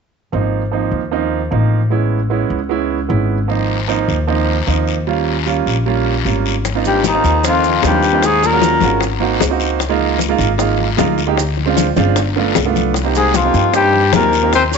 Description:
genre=Afro-Cuban jazz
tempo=152 BPM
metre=4/4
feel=straight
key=Ab major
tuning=A4 = 440 Hz
part: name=clear baby grand piano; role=accompaniment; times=0.3-14.5 s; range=F3 to G4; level=-18 LUFS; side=right 10 dB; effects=none
part: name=upright bass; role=bass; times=0.3-14.8 s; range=G1 to G2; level=-19 LUFS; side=left 1 dB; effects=none
part: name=guiro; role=percussion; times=3.5-14.8 s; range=none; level=-26 LUFS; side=left 15 dB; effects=none
part: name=bongos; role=percussion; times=6.6-14.8 s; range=none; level=-22 LUFS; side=left 14 dB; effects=none
part: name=congas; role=percussion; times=6.6-14.8 s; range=none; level=-24 LUFS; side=left 15 dB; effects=none
part: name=maracas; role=percussion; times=6.6-14.8 s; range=none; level=-28 LUFS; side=right 14 dB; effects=none
part: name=mellow trumpet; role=melody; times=6.9-9.0, 13.2-14.8 s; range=Eb4 to Db5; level=-15 LUFS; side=left 1 dB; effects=none
part: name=bright baritone saxophone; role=second line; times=6.9-9.0, 13.2-14.8 s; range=Eb2 to Db3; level=-18 LUFS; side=left 11 dB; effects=none
room=moderate echo chamber reverb, RT60 1.4 s, small room ambience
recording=1960s-style stereo with parts hard left and right, nothing above 7.9 kHz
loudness=-13 LUFS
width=side -5 dB against mid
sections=0.3-6.6 A section; 6.6-14.8 B section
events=none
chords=0.3 Ab69; 1.9 Amaj9; 3.5 Ab69; 5.1 Eb9; 6.6 Ab69; 8.2 Ebm11; 9.0 Ab7; 9.8 Db69; 11.4 Dm7b5; 12.2 G7; 12.9 Cm7

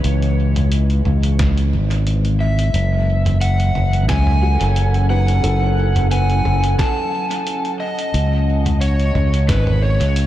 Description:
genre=ambient dub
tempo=89 BPM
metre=4/4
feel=swing 54% on 16ths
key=F# dorian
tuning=A4 = 440 Hz
part: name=warbly tape-like pad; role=sustained chords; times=0.0-10.3 s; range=C#3 to F#5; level=-25 LUFS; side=left 2 dB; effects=chorus, built-in reverb
part: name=felt-muted upright piano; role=arpeggios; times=0.0-8.2 s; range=D#4 to B4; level=-32 LUFS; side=right 2 dB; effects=analog delay
part: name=modern bright fingered electric bass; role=bass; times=0.0-10.3 s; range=F#1 to C#2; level=-16 LUFS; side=equal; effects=tube saturation
part: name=lo-fi sampler-style drum kit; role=drums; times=0.0-10.3 s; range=hi-hat, snare drum, toms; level=-26 LUFS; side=equal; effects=dub echo
part: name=electronic kick drum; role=drums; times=1.4-9.6 s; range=none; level=-20 LUFS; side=equal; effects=none
part: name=overdriven slide guitar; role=melody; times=2.4-10.3 s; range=B4 to A5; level=-23 LUFS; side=equal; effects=analog delay
room=light reverb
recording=none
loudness=-15 LUFS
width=side -13 dB against mid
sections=0.0-10.3 A section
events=none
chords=0.0 C#m9; 2.7 F#m9; 8.1 C#sus2

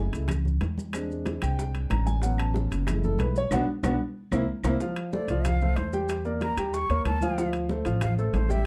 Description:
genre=Afro-Cuban jazz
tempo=186 BPM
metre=4/4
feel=straight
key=F major from 4.8 s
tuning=A4 = 440 Hz
part: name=warm concert grand piano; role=accompaniment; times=0.0-8.7 s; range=F3 to Bb5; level=-32 LUFS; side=equal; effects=none
part: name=upright bass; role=bass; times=0.0-8.7 s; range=F#1 to E2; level=-30 LUFS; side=equal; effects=none
part: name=bongos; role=percussion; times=0.1-8.7 s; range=none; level=-41 LUFS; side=equal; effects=none
part: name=congas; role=percussion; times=0.1-8.7 s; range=none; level=-37 LUFS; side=equal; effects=none
part: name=maracas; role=percussion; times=0.1-8.7 s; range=none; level=-51 LUFS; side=equal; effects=none
part: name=timbales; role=percussion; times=0.1-8.5 s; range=none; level=-40 LUFS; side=equal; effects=none
part: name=claves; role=percussion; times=0.3-4.7 s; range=none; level=-46 LUFS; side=equal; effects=none
part: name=breathy jazz flute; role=second line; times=5.1-8.7 s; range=A4 to Db6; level=-35 LUFS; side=equal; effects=none
room=light reverb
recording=dark, warm production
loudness=-27 LUFS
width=mono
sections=0.0-4.8 A section; 4.8-8.7 A section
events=grand piano solo 0.0-4.8; band accent 3.5-4.8; drum fill 4.0-4.8; flute solo 4.8-8.7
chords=0.0 F#m9 (rootless); 0.9 E7alt; 2.2 A69; 2.9 F#m9; 3.5 Bm; 4.2 C7; 4.8 F69; 6.1 Em7b5; 6.7 Eb7#11; 7.4 Dm7

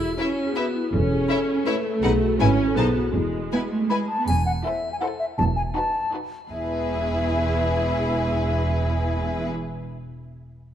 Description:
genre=cinematic, playful, whimsical film cue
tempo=162 BPM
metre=3/4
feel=straight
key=E major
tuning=A4 = 439 Hz
part: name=marimba with soft mallets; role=melody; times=0.0-3.9 s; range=E4 to B4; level=-27 LUFS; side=left 5 dB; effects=none
part: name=rich studio viola section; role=accompaniment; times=0.0-9.5 s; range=G#3 to E4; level=-28 LUFS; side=right 2 dB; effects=none
part: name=rich studio cello section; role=bass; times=0.0-9.5 s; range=E2 to B3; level=-27 LUFS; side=right 2 dB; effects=none
part: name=rich studio double bass section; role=bass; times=0.0-9.5 s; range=E1 to B1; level=-27 LUFS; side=right 2 dB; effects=none
part: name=clear studio violin section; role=melody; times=0.2-9.5 s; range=B4 to A5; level=-32 LUFS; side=left 6 dB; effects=none
part: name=warm studio violin section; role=second line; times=0.2-9.5 s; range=D#4 to C#5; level=-32 LUFS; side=left 3 dB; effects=none
part: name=mellow hollow silver concert flute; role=second line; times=3.9-9.5 s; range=E5 to B5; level=-26 LUFS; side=left 2 dB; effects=none
part: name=triangle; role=percussion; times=4.3-5.0 s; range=none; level=-45 LUFS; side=left 5 dB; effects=none
room=moderate scoring stage reverb, RT60 2.1 s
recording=dark, warm production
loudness=-21 LUFS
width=side -10 dB against mid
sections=0.0-4.3 A section; 4.3-6.5 B section; 6.5-8.7 C section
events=none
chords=0.0 E5; 0.9 A/E; 2.0 B; 2.4 E/G#; 2.8 B(b9); 3.1 E; 4.3 Am/E; 5.4 B7/E; 6.5 E

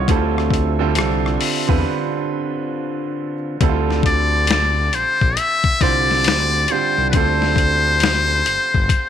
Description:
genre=R&B, neo-soul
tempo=68 BPM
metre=4/4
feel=swing 61% on 16ths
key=D dorian, D minor from 3.6 s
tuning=A4 = 440 Hz
part: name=clear grand piano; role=accompaniment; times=0.0-9.1 s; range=D3 to F5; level=-23 LUFS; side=right 9 dB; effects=none
part: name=tonewheel organ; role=sustained chords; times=0.0-3.6 s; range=D3 to E5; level=-27 LUFS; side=left 1 dB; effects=fast rotary speaker, chorus vibrato
part: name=smooth gliding synth bass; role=bass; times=0.0-8.9 s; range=G1 to E2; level=-21 LUFS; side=left 1 dB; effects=transformer saturation
part: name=boom bap sampler-style drum kit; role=drums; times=0.1-9.1 s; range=hi-hat, kick drum, rim click, snare drum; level=-19 LUFS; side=left 4 dB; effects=none
part: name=trumpet with metal mute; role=melody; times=4.1-9.1 s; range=B4 to E5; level=-17 LUFS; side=left 2 dB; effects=none
room=light reverb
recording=1960s-style stereo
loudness=-15 LUFS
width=side -9 dB against mid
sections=0.0-3.6 A section; 3.6-9.1 B section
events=break 1.8-3.6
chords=0.1 Dm9; 3.6 Dm7

